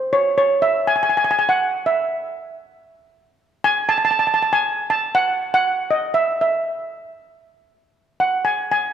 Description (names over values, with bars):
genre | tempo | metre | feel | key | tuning
calypso | 118 BPM | 4/4 | swing 54% on 16ths | unclear | A4 = 440 Hz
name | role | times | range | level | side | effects
steel pan | solo | 0.1-8.9 s | C#5 to A5 | -17 LUFS | right 1 dB | none
room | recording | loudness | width
wet concert hall reverb, RT60 1.8 s | dark, warm production | -17 LUFS | side -9 dB against mid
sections
0.1-8.9 A section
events
none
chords
none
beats
| 0.10 0.61 1.11 1.62 | 2.13 2.63 3.14 3.65 | 4.15 4.66 5.17 5.67 | 6.18 6.69 7.19 7.70 | 8.20 8.71